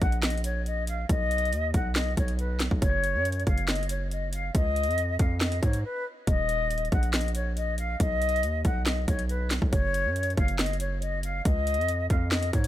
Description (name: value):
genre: hip hop, trap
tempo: 139 BPM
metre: 4/4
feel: half-time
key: unclear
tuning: A4 = 440 Hz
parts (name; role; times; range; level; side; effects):
- mellow concert flute; melody; 0.0-12.7 s; B4 to F#5; -30 LUFS; left 2 dB; none
- hard-hitting 808-style bass; bass; 0.0-12.7 s; Eb1 to Ab2; -29 LUFS; equal; none
- trap drum kit; drums; 0.0-12.7 s; handclaps, hi-hat, kick drum, snare drum; -27 LUFS; equal; none
room: digital ambience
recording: none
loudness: -24 LUFS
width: side -13 dB against mid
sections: 0.0-12.7 A section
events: break 5.8-6.3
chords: 0.0 Eb5; 1.1 B; 2.8 Gb5; 4.5 Dbadd9; 6.3 Eb5; 8.0 B; 9.7 Gb5; 11.5 Dbadd9